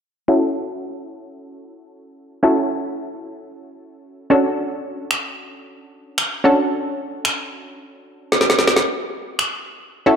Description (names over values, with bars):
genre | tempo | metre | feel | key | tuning
dance-pop | 112 BPM | 4/4 | straight | F# minor | A4 = 439 Hz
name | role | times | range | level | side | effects
punchy chord stab | accompaniment | 0.3-10.2 s | C#4 to A4 | -18 LUFS | equal | chorus, low-pass filter
electronic finger snaps and snare drum | drums | 5.1-9.5 s | none | -18 LUFS | equal | none
room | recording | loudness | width
moderate lush hall reverb, RT60 2.0 s | dark, warm production | -18 LUFS | side -7 dB against mid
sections
0.3-8.9 A section; 8.9-10.2 B section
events
filter sweep on synth stab 0.3-8.9; drum fill 8.3-8.9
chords
0.3 F#m7; 4.3 Dmaj7; 8.9 F#m7